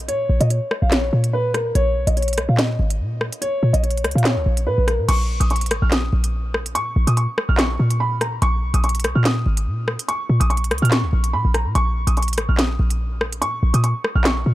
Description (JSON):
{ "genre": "hip hop, drill", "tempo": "144 BPM", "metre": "4/4", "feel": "half-time", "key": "Bb phrygian", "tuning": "A4 = 440 Hz", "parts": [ { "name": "dark concert grand piano", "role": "melody", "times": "0.0-14.5 s", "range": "Bb4 to F6", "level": "-24 LUFS", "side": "equal", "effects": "low-pass filter, ping-pong delay" }, { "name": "short 808-style bass", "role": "bass", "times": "0.0-14.5 s", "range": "Ab1 to Bb2", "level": "-19 LUFS", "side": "equal", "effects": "none" }, { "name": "drill drum kit", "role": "drums", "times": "0.1-14.4 s", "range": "crash cymbal, handclaps, hi-hat, rim click, snare drum", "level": "-23 LUFS", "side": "equal", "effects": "none" } ], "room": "little or no reverb", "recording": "dark, warm production", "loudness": "-17 LUFS", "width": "side -15 dB against mid", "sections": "0.0-5.1 A section; 5.1-14.5 B section", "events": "none", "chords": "0.0 Bbm", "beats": "| 0.09 0.50 0.92 1.34 | 1.75 2.17 2.59 3.00 | 3.42 3.84 4.25 4.67 | 5.09 5.50 5.92 6.34 | 6.75 7.17 7.59 8.00 | 8.42 8.84 9.25 9.67 | 10.09 10.50 10.92 11.34 | 11.75 12.17 12.59 13.00 | 13.42 13.84 14.25" }